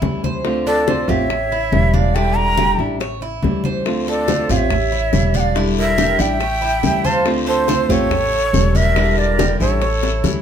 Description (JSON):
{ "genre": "latin, Cuban son and guajira", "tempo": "141 BPM", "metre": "4/4", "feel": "straight", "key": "unclear", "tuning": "A4 = 439 Hz", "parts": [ { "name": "nylon-string guitar", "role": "accompaniment", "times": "0.0-10.4 s", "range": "D3 to F4", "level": "-22 LUFS", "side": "left 2 dB", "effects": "none" }, { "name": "Cuban tres", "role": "arpeggios", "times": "0.0-10.4 s", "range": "D4 to C#5", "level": "-25 LUFS", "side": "right 3 dB", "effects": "none" }, { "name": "upright bass", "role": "bass", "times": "0.0-10.4 s", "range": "E1 to D2", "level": "-21 LUFS", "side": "equal", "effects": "none" }, { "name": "bongos", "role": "percussion", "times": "0.0-10.3 s", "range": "none", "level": "-25 LUFS", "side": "left 6 dB", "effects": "none" }, { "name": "congas", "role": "percussion", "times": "0.0-10.4 s", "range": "none", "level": "-24 LUFS", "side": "equal", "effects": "none" }, { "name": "breathy shakuhachi", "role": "melody", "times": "0.7-10.4 s", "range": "C5 to Bb5", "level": "-20 LUFS", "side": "right 1 dB", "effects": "none" }, { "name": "breathy bright jazz flute", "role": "second line", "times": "0.7-10.4 s", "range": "A4 to G5", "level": "-25 LUFS", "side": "right 6 dB", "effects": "none" }, { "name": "guiro", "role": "percussion", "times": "3.9-10.4 s", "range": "none", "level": "-31 LUFS", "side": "left 6 dB", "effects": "none" } ], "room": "moderate studio reverb, RT60 0.9 s", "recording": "minimal, uncompressed stereo recording", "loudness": "-15 LUFS", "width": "side -8 dB against mid", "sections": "0.0-10.4 A section", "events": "drum fill 10.0-10.4", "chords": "0.4 Dm7; 1.3 A7; 2.2 Em7b5; 3.0 A7; 3.9 Dm7; 4.7 A7; 5.6 Em7b5; 6.4 A7; 7.3 Dm7; 8.1 A7; 9.0 Em7b5; 9.8 A7" }